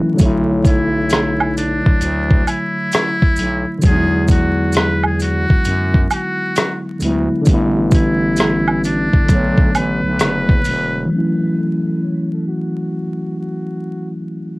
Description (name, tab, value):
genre	lo-fi hip hop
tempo	66 BPM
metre	4/4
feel	swing 66% on 16ths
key	B minor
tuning	A4 = 440 Hz
part	tine electric piano	accompaniment	0.0-14.6 s	D3 to C#5	-18 LUFS	equal	medium stereo tremolo, low-pass filter
part	growling FM bass	bass	0.2-11.1 s	E1 to F#2	-21 LUFS	equal	tube saturation
part	dusty soul sampler-style drum kit	drums	0.2-10.9 s	hi-hat, kick drum, rim click	-14 LUFS	equal	cassette tape
part	maracas and woodblock	percussion	0.2-10.9 s	none	-22 LUFS	right 3 dB	none
part	trumpet with metal mute	melody	0.7-14.1 s	D4 to C#5	-22 LUFS	equal	low-pass filter, cassette tape
room	light reverb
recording	home recording on cassette, vinyl crackle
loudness	-14 LUFS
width	side -23 dB against mid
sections	0.0-11.1 A section; 11.1-14.6 B section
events	filter sweep 11.1-14.6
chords	0.2 Bm11; 3.8 E9; 7.5 A9sus4; 9.3 Bm9; 11.1 F#m7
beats	| 0.20 1.11 2.02 2.92 | 3.83 4.74 5.65 6.56 | 7.47 8.38 9.29 10.20 | 11.11 12.02 12.93 13.83